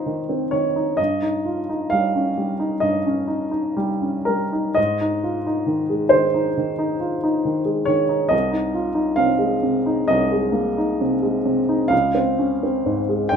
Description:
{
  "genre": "classical, romantic character piece for solo piano",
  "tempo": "56-70 BPM",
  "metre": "4/4",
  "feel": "rubato",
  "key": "Ab major",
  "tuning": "A4 = 440 Hz",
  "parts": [
    { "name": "warm upright piano", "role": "solo", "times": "0.0-13.4 s", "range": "C2 to G5", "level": "-18 LUFS", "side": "equal", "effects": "none" }
  ],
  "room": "moderate large studio reverb, RT60 1.1 s",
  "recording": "minimal, uncompressed stereo recording",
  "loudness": "-18 LUFS",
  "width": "side -7 dB against mid",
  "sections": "0.0-13.4 A section",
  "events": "none",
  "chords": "0.0 Ab; 1.0 Eb7/G; 4.8 Ab; 8.3 Ab/C; 11.9 Dbmaj7"
}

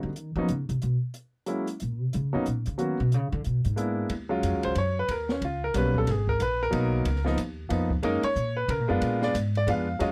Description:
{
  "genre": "jazz piano trio",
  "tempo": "183 BPM",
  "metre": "3/4",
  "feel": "swing 62% on 8ths",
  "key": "Eb minor",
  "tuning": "A4 = 440 Hz",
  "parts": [
    { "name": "clear grand piano", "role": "melody", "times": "0.0-10.1 s", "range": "F3 to F5", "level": "-30 LUFS", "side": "equal", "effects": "none" },
    { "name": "upright bass", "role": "bass", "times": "0.0-10.1 s", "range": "Ab1 to E#3", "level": "-30 LUFS", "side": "equal", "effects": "none" },
    { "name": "open jazz drum kit", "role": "drums", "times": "0.2-10.1 s", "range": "hi-hat, kick drum, ride cymbal, snare drum", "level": "-38 LUFS", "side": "equal", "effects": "none" }
  ],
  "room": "little or no reverb",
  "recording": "dry, close 1970s-style studio recording",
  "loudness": "-27 LUFS",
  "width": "mono",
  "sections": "0.0-4.1 A section; 4.1-10.1 A section",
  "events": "upright bass solo 0.0-4.1; grand piano solo 4.1-10.1",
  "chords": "0.2 Badd9(#11); 1.1 N.C.; 2.1 Bmaj9; 3.1 E7#11; 4.1 Ebm11; 5.1 Eb7b13; 6.1 Abm9; 7.1 Db13; 8.0 Gb; 9.0 Bb7b9"
}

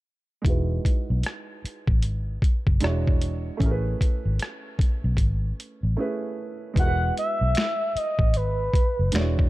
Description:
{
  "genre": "R&B, neo-soul",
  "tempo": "76 BPM",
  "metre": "4/4",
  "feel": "swing 62% on 16ths",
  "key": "E major",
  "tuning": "A4 = 441 Hz",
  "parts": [
    { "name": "warm upright piano", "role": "accompaniment", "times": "0.4-9.5 s", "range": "G#3 to C#5", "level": "-32 LUFS", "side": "right 4 dB", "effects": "low-pass filter" },
    { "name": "boom bap sampler-style drum kit", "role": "drums", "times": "0.4-9.5 s", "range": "finger snaps, hi-hat, kick drum, rim click, snare drum", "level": "-23 LUFS", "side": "equal", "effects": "none" },
    { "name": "vintage muted fingered electric bass", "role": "bass", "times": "0.5-9.5 s", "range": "E1 to B1", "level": "-24 LUFS", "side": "equal", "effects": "none" },
    { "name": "expressive synth lead", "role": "melody", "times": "6.8-9.5 s", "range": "B4 to F#5", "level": "-26 LUFS", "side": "equal", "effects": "chorus, slapback echo" }
  ],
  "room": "little or no reverb",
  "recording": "dark, warm production",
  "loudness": "-22 LUFS",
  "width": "side -18 dB against mid",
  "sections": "0.4-6.8 A section; 6.8-9.5 B section",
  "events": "filter sweep on upright piano 0.4-6.8; break 6.0-6.8",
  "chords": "0.4 Emaj9; 2.8 E13; 3.6 Amaj9; 6.8 Eadd9"
}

